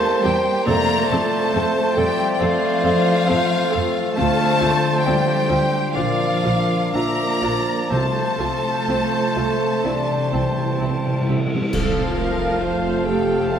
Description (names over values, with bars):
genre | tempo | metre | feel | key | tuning
classical, slow romantic movement for symphony orchestra | 59-70 BPM | 4/4 | rubato | F major | A4 = 440 Hz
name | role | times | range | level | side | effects
warm studio violin section | melody | 0.0-13.6 s | F5 to Bb5 | -26 LUFS | left 3 dB | none
dark clarinet | second line | 0.0-13.6 s | A4 to F5 | -28 LUFS | left 1 dB | none
mellow hollow silver concert flute | second line | 0.0-13.6 s | F5 to Bb5 | -28 LUFS | left 1 dB | none
warm cor anglais | second line | 0.0-13.6 s | C5 to F5 | -29 LUFS | right 1 dB | none
warm studio violin section | second line | 0.0-13.6 s | F4 to A5 | -32 LUFS | left 2 dB | none
mellow bassoon | accompaniment | 0.0-13.6 s | F3 to D4 | -26 LUFS | right 2 dB | none
mellow French horn section | sustained chords | 0.0-13.6 s | C4 to C5 | -27 LUFS | left 3 dB | none
warm trombone section | sustained chords | 0.0-13.6 s | E3 to Bb3 | -29 LUFS | right 5 dB | none
concert harp | arpeggios | 0.0-13.6 s | Bb2 to Bb4 | -29 LUFS | left 7 dB | none
warm studio cello section | bass | 0.0-13.6 s | F2 to Bb3 | -28 LUFS | right 2 dB | none
warm studio viola section | accompaniment | 0.2-13.6 s | F3 to C5 | -28 LUFS | right 2 dB | none
dark studio double bass section | bass | 0.3-13.6 s | F1 to F2 | -29 LUFS | right 3 dB | none
timpani | percussion | 0.7-1.9, 7.9-11.7 s | F2 to C3 | -26 LUFS | right 1 dB | none
cymbal swell, clash cymbals and concert bass drum | percussion | 7.9-13.5 s | none | -30 LUFS | equal | none
room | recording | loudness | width
wet scoring stage reverb, RT60 2.0 s | none | -17 LUFS | side -8 dB against mid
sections
0.0-11.7 A section; 11.7-13.6 B section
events
timpani fill 9.9-11.7; band accent 11.7-12.6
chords
0.0 C7/E; 0.7 F; 4.2 Dm7; 6.0 Bb; 7.9 F/C; 9.9 C; 11.7 F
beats
| 0.68 1.54 2.41 3.28 | 4.17 5.05 5.96 6.95 | 7.92 8.88 9.85 10.80 | 11.73 12.62 13.49